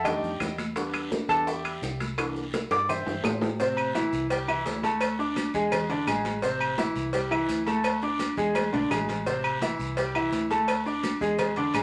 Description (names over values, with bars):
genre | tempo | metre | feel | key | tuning
latin, salsa | 169 BPM | 4/4 | straight | A minor | A4 = 439 Hz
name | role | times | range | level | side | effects
clear grand piano | accompaniment | 0.0-11.8 s | C3 to D6 | -30 LUFS | equal | none
fingered electric bass | bass | 0.0-11.8 s | A1 to A2 | -39 LUFS | equal | none
bongos and cowbell | percussion | 0.1-11.8 s | none | -36 LUFS | equal | none
claves | percussion | 0.1-11.8 s | none | -37 LUFS | equal | none
congas | percussion | 0.1-11.8 s | none | -39 LUFS | equal | none
guiro | percussion | 0.1-11.8 s | none | -45 LUFS | equal | none
maracas | percussion | 0.1-11.8 s | none | -48 LUFS | equal | none
timbales and agogo bells | percussion | 0.1-11.8 s | none | -35 LUFS | equal | none
room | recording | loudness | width
wet studio reverb, RT60 0.5 s | none | -27 LUFS | mono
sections
0.0-3.6 A section; 3.6-11.8 B section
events
grand piano solo 0.0-3.6; drum fill 2.7-3.6, 8.6-9.3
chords
0.1 F13; 0.8 Em7; 2.2 C7; 3.6 Am; 4.3 C; 5.0 D5; 5.7 E7; 6.4 Am; 7.1 C; 7.8 D5; 8.6 E7; 9.3 Am; 10.0 C; 10.7 D5